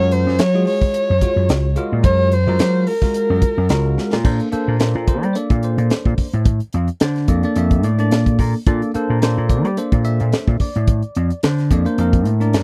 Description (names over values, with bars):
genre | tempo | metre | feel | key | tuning
electric jazz fusion | 109 BPM | 4/4 | swing 54% on 16ths | unclear | A4 = 435 Hz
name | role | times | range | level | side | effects
dark violin | melody | 0.0-4.0 s | Bb4 to Db5 | -22 LUFS | equal | none
bell-like tine electric piano | accompaniment | 0.0-12.6 s | Ab3 to E5 | -25 LUFS | equal | phaser
vintage slap bass | bass | 0.0-12.6 s | Db2 to G3 | -20 LUFS | equal | none
tight funk drum kit | drums | 0.1-12.6 s | crash cymbal, hi-hat, kick drum, snare drum | -20 LUFS | equal | none
room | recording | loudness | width
little or no reverb | none | -17 LUFS | mono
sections
0.0-4.3 A section; 4.3-12.6 B section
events
drum fill 4.0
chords
0.0 Gbmaj9; 4.3 Bbmaj9